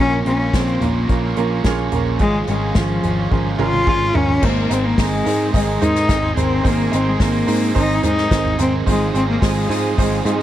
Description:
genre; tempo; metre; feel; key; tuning
piano-driven pop; 108 BPM; 4/4; straight; unclear; A4 = 440 Hz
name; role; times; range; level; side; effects
warm cello; melody; 0.0-10.4 s; F3 to F4; -20 LUFS; left 3 dB; none
clear baby grand piano; accompaniment; 0.0-10.4 s; Ab2 to Eb5; -24 LUFS; right 9 dB; none
warm studio string section; sustained chords; 0.0-10.4 s; Ab4 to Eb6; -32 LUFS; right 2 dB; none
overdriven electric guitar; riff; 0.0-10.4 s; Ab2 to Bb4; -27 LUFS; right 4 dB; none
picked electric bass; bass; 0.0-10.4 s; Ab1 to Ab2; -21 LUFS; equal; none
unplugged drum kit; drums; 0.3-10.4 s; crash cymbal, hi-hat, kick drum, snare drum, toms; -21 LUFS; equal; none
room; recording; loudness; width
little or no reverb; dry, close 1970s-style studio recording; -15 LUFS; side -12 dB against mid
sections
0.0-4.4 A section; 4.4-10.4 B section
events
drum fill 3.3-4.4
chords
0.0 Bbm; 2.2 Db/Ab; 4.4 Abadd9; 8.9 Fm7/Ab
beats
0.54 1.09 1.65 | 2.21 2.76 3.31 3.87 | 4.43 4.98 5.54 6.09 | 6.65 7.20 7.76 8.31 | 8.87 9.43 9.98

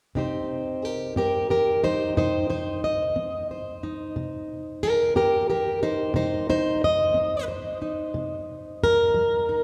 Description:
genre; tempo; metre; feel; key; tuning
acoustic country blues, solo or duo; 60 BPM (dotted quarters); 12/8; straight; C minor; A4 = 440 Hz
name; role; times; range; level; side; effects
fingerpicked plugged-in steel-string acoustic guitar; solo; 0.2-9.6 s; C3 to Eb5; -25 LUFS; equal; none
room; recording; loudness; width
wet church reverb, RT60 3.6 s; recorded in a church or concert hall; -25 LUFS; mono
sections
0.2-9.6 A section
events
steel-string acoustic guitar solo 0.2-9.6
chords
0.2 Cm7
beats
| 0.16 1.16 2.16 3.16 | 4.15 5.15 6.15 7.14 | 8.14 9.14

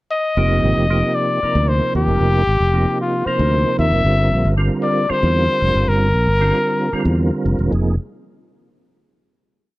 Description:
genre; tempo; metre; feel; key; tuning
electric jazz fusion; 229 BPM (eighths); 7/8; straight; unclear; A4 = 442 Hz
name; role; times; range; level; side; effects
breathy trumpet; melody; 0.1-7.2 s; F4 to E5; -19 LUFS; left 2 dB; none
percussive tonewheel organ; accompaniment; 0.4-8.0 s; C3 to Bb4; -21 LUFS; right 2 dB; slow rotary speaker, chorus vibrato
fingered electric bass; bass; 0.4-8.0 s; E1 to E2; -17 LUFS; equal; none
room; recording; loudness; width
studio ambience; dry, close 1970s-style studio recording; -15 LUFS; side -18 dB against mid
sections
0.0-0.4 pickup bar; 0.4-7.7 groove; 7.7-9.5 final chord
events
none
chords
0.4 F7sus2; 4.0 Gm7; 7.7 Fm7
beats
0.12 | 0.38 0.64 0.90 1.17 1.43 1.69 1.95 | 2.21 2.48 2.74 3.00 3.26 3.52 3.79 | 4.05 4.31 4.57 4.83 5.09 5.36 5.62 | 5.88 6.14 6.40 6.66 6.93 7.19 7.45 | 7.71

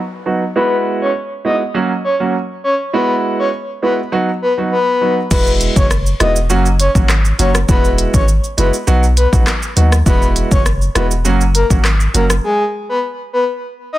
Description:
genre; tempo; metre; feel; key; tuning
dancehall; 101 BPM; 4/4; straight; unclear; A4 = 440 Hz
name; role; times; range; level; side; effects
downlifter; sound effects; 0.0-0.6 s; none; -42 LUFS; left 2 dB; none
warm concert grand piano; accompaniment; 0.3-12.3 s; F#3 to F#4; -18 LUFS; right 3 dB; low-pass filter
breathy flute-like synth lead; melody; 0.6-14.0 s; G#4 to D#5; -18 LUFS; left 2 dB; chorus, low-pass filter, digital delay
punchy sub bass; bass; 5.3-12.4 s; E1 to D#2; -15 LUFS; equal; none
deep house drum kit; drums; 5.3-12.4 s; crash cymbal, handclaps, hi-hat, kick drum, rim click, shaker; -15 LUFS; equal; none
room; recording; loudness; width
light reverb, digital ambience; dense, heavily limited modern master; -12 LUFS; side -15 dB against mid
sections
0.0-5.3 A section; 5.3-14.0 B section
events
break 12.4-14.0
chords
0.0 B; 0.6 Eadd9; 1.7 F#; 2.9 Eadd9; 4.1 B; 5.3 Eadd9; 6.5 F#; 7.7 Eadd9; 8.9 B; 10.1 Eadd9; 11.3 F#; 12.4 N.C.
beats
| 0.56 1.15 1.75 2.34 | 2.94 3.53 4.12 4.72 | 5.31 5.91 6.50 7.09 | 7.69 8.28 8.88 9.47 | 10.06 10.66 11.25 11.85 | 12.44 13.03 13.63

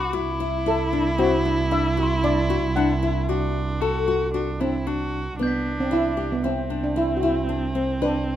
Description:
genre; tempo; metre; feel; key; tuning
contemporary instrumental, chamber music in an uneven meter; 114 BPM; 5/4; straight; C lydian; A4 = 444 Hz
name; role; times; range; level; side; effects
steel pan; melody; 0.0-8.4 s; B3 to A5; -25 LUFS; right 1 dB; none
warm viola; second line; 0.0-8.4 s; C4 to F#4; -27 LUFS; right 2 dB; none
warm double bass; bass; 0.0-8.4 s; C2; -27 LUFS; right 3 dB; none
glockenspiel with soft plastic mallets; texture; 0.0-6.5 s; B5 to B6; -36 LUFS; left 5 dB; none
nylon-string guitar; arpeggios; 0.1-8.3 s; B3 to B4; -27 LUFS; left 6 dB; none
room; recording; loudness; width
light reverb; close, detailed microphones; -21 LUFS; side -11 dB against mid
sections
0.0-5.4 A section; 5.4-8.4 B section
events
none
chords
0.0 Dadd9/C; 5.4 Cmaj7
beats
| 0.14 0.66 1.19 1.71 2.24 | 2.76 3.29 3.81 4.34 4.86 | 5.39 5.91 6.44 6.96 7.49 | 8.02

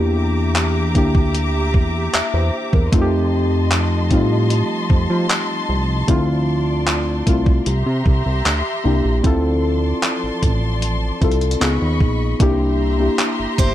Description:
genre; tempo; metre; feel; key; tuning
contemporary R&B; 76 BPM; 4/4; straight; D minor; A4 = 442 Hz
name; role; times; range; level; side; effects
muted felt-like synth keys; accompaniment; 0.0-13.7 s; G3 to E5; -20 LUFS; left 1 dB; chorus
warm studio string section; sustained chords; 0.0-13.7 s; F3 to D6; -26 LUFS; left 1 dB; sidechain pumping
fat analog bass; bass; 0.0-13.7 s; G1 to F3; -19 LUFS; equal; none
crisp 8-bit digital drum machine; drums; 0.6-13.7 s; handclaps, hi-hat, kick drum; -18 LUFS; equal; none
picked steel-string acoustic guitar; arpeggios; 13.6-13.7 s; G4 to C5; -21 LUFS; right 1 dB; none
room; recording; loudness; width
digital ambience; dark, warm production; -15 LUFS; side -12 dB against mid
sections
0.0-9.2 A section; 9.2-13.7 B section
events
none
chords
0.0 Em7b5; 2.9 F7; 6.1 Dm7; 7.7 C7; 9.2 Dm7; 11.6 C#9; 12.4 C7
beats
0.56 1.35 2.14 | 2.93 3.71 4.50 5.29 | 6.08 6.87 7.66 8.45 | 9.24 10.03 10.82 11.61 | 12.40 13.19

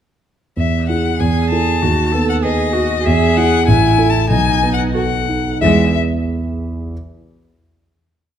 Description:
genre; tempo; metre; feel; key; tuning
quick classical-period movement for piano trio; 88-98 BPM; 2/4; rubato; E major; A4 = 440 Hz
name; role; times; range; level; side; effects
clear violin; melody; 0.6-6.0 s; D#5 to A5; -19 LUFS; left 8 dB; none
dark concert grand piano; accompaniment; 0.6-6.9 s; A1 to E5; -16 LUFS; right 1 dB; none
rich cello; second line; 1.2-6.0 s; G#3 to A4; -19 LUFS; right 5 dB; none
room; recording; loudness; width
wet recital hall reverb, RT60 1.4 s; dark, warm production; -13 LUFS; side -9 dB against mid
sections
0.6-5.6 theme; 5.6-6.9 final chord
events
slowing down 2.4-5.6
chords
0.6 E; 1.2 A5/E; 1.8 B/D#; 3.0 E; 3.7 A5; 4.3 B7; 5.6 E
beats
| 0.57 1.20 | 1.82 2.43 | 3.05 3.67 | 4.29 4.94 | 5.61 6.26

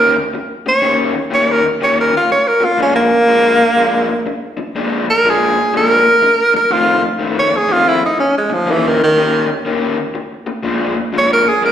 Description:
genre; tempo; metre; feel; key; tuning
blues; 122 BPM; 4/4; swing 64% on 8ths; unclear; A4 = 440 Hz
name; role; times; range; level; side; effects
breathy tenor saxophone; melody; 0.0-11.7 s; Eb3 to Db5; -12 LUFS; right 1 dB; slapback echo
raw garage guitar; riff; 0.0-11.7 s; F2 to G4; -18 LUFS; left 3 dB; overdrive, slapback echo
room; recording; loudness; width
light reverb; live gig heard through the venue's PA, recital hall reverb; -11 LUFS; side -10 dB against mid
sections
0.0-11.7 A section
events
tenor saxophone solo 0.0-11.7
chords
0.0 Eb7; 2.8 Bb7; 6.7 F7; 8.7 Eb7; 10.7 Bb7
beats
0.34 | 0.83 1.32 1.81 2.30 | 2.79 3.28 3.77 4.27 | 4.76 5.25 5.74 6.23 | 6.72 7.21 7.70 8.20 | 8.69 9.18 9.67 10.16 | 10.65 11.14 11.63

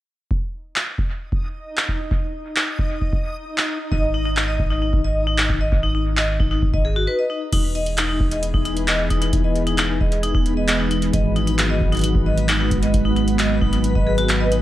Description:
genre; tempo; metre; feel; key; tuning
IDM; 133 BPM; 4/4; straight; E major; A4 = 440 Hz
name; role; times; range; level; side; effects
electronic kick drum; drums; 0.3-14.0 s; none; -22 LUFS; equal; none
backwards swelling texture; texture; 1.4-14.6 s; B3 to D#5; -30 LUFS; equal; built-in reverb
booming analog drum machine; drums; 0.8-14.6 s; crash cymbal, handclaps, hi-hat; -24 LUFS; right 1 dB; analog delay
vibraphone with hard mallets; arpeggios; 3.9-14.6 s; D#4 to D#5; -24 LUFS; left 3 dB; vintage 12-bit sampler grit, tape echo
rubbery square bass; bass; 3.9-14.6 s; E1 to G#1; -22 LUFS; equal; none
glassy FM pad; sustained chords; 7.5-14.6 s; D#3 to G#4; -23 LUFS; right 1 dB; ensemble chorus, built-in reverb
room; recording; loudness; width
digital ambience; dry, gritty hardware recording; -18 LUFS; side -14 dB against mid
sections
0.3-7.5 A section; 7.5-14.6 B section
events
break 7.1-7.5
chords
0.3 N.C.; 3.9 G#5; 7.5 Emaj7; 11.1 G#m7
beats
| 0.31 0.76 1.21 1.66 | 2.11 2.56 3.01 3.46 | 3.92 4.37 4.82 5.27 | 5.72 6.17 6.62 7.07 | 7.53 7.98 8.43 8.88 | 9.33 9.78 10.23 10.68 | 11.13 11.59 12.04 12.49 | 12.94 13.39 13.84 14.29

